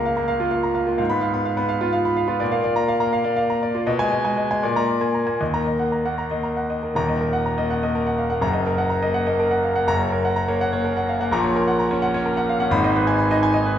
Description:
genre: classical, virtuoso piano study.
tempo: 76-88 BPM (dotted quarters).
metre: 6/8.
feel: rubato.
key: Eb minor.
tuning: A4 = 441 Hz.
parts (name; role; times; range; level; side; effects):
clear grand piano; solo; 0.0-13.8 s; Eb1 to Cb6; -19 LUFS; equal; none.
room: wet recital hall reverb, RT60 1.4 s.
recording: recorded in a church or concert hall, nothing above 10.5 kHz.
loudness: -19 LUFS.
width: side -10 dB against mid.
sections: 0.0-7.0 A section; 7.0-13.8 B section.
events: none.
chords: 0.0 Bbm/Db; 1.0 Fdim/Ab; 2.4 Bb; 3.9 Abm/Cb; 4.6 Bb7; 5.4 Ebm; 8.4 Ebm/Gb; 9.9 Gb; 11.3 Gb/Bb; 12.7 Abm.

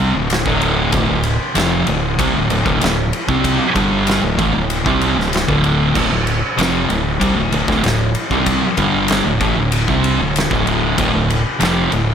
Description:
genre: stoner and doom metal.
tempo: 96 BPM.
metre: 4/4.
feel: straight.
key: D minor.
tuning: A4 = 439 Hz.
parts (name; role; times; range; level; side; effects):
thick fuzz guitar; riff; 0.0-12.1 s; D2 to C4; -19 LUFS; left 7 dB; distortion.
thick fuzz guitar; riff; 0.0-12.1 s; D2 to C4; -18 LUFS; right 7 dB; distortion.
growling fingered electric bass; bass; 0.0-12.1 s; D1 to C2; -24 LUFS; equal; overdrive, tube saturation.
oversized low-tuned drum kit; drums; 0.3-12.1 s; crash cymbal, kick drum, ride cymbal, snare drum; -19 LUFS; equal; none.
room: light reverb.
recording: none.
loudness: -14 LUFS.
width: side -8 dB against mid.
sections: 0.0-12.1 A section.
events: none.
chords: 0.0 Dm.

